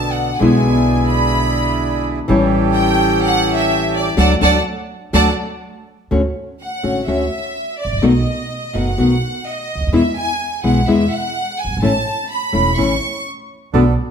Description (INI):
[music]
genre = tango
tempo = 126 BPM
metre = 4/4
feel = rubato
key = D major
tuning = A4 = 440 Hz
[part]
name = clear studio violin section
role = second line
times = 0.0-13.3 s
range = D5 to C#6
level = -20 LUFS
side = equal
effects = none
[part]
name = nylon-string guitar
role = accompaniment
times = 0.0-13.8 s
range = B2 to F#4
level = -17 LUFS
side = left 3 dB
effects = none
[part]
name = bandoneon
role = stabs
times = 0.0-5.3, 13.7-13.9 s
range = B3 to A4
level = -21 LUFS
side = right 8 dB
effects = none
[part]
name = upright bass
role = bass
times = 0.0-13.9 s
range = E1 to E2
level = -20 LUFS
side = right 2 dB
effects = none
[sound]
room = wet large studio reverb, RT60 1.4 s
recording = none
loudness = -14 LUFS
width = side -7 dB against mid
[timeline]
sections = 0.0-6.1 A section; 6.1-14.1 A section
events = violin section solo 0.0-6.1, 6.1-14.1; band accent 4.2-6.1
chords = 0.4 E7/B; 2.3 A7; 4.2 D; 6.1 Dmaj7; 8.0 B7; 9.9 E; 11.8 A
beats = | 0.40 0.87 1.35 1.82 | 2.29 2.76 3.23 3.71 | 4.18 4.66 5.14 5.63 | 6.11 6.59 7.07 7.55 | 8.02 8.50 8.97 9.45 | 9.92 10.40 10.87 11.35 | 11.82 12.30 12.78 13.26 | 13.74